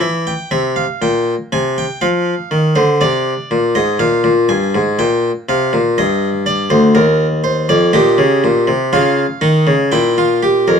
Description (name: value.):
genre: classical, baroque-style 3-part fugue for harpsichord.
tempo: 61 BPM.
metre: 4/4.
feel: straight.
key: unclear.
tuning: A4 = 440 Hz.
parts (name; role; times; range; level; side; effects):
harpsichord; solo; 0.0-10.8 s; D2 to Ab5; -12 LUFS; equal; none.
room: moderate studio reverb, RT60 0.6 s.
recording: worn, warbling old tape, cassette tape, warbly pitch drift.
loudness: -12 LUFS.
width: side -7 dB against mid.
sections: 0.0-10.8 A section.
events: none.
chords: 0.0 C7; 2.0 Fm; 4.0 Bb5; 6.0 Eb; 7.9 Bbm; 9.9 Edim.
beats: | 0.02 1.03 2.03 3.02 | 4.01 4.99 5.98 6.96 | 7.95 8.93 9.93.